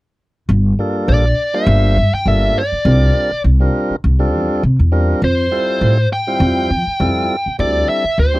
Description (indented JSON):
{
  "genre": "electric jazz fusion",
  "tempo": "102 BPM",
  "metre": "4/4",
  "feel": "swing 54% on 16ths",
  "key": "G dorian",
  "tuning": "A4 = 441 Hz",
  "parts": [
    { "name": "upright bass", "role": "bass", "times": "0.5-8.4 s", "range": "G1 to F3", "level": "-14 LUFS", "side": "equal", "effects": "none" },
    { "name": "tonewheel organ", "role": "accompaniment", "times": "0.8-8.4 s", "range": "G3 to C5", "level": "-19 LUFS", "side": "equal", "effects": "overdrive, stopped rotary speaker" },
    { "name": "bluesy overdriven lead guitar", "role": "melody", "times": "1.1-8.4 s", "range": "C5 to G5", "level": "-18 LUFS", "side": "equal", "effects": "distortion" }
  ],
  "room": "little or no reverb",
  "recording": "dry, close 1970s-style studio recording",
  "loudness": "-13 LUFS",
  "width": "side -19 dB against mid",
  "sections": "0.5-8.4 A section",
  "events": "none",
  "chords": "0.5 Gm9; 2.9 C9sus4; 5.2 Fmaj9; 7.6 D9sus4"
}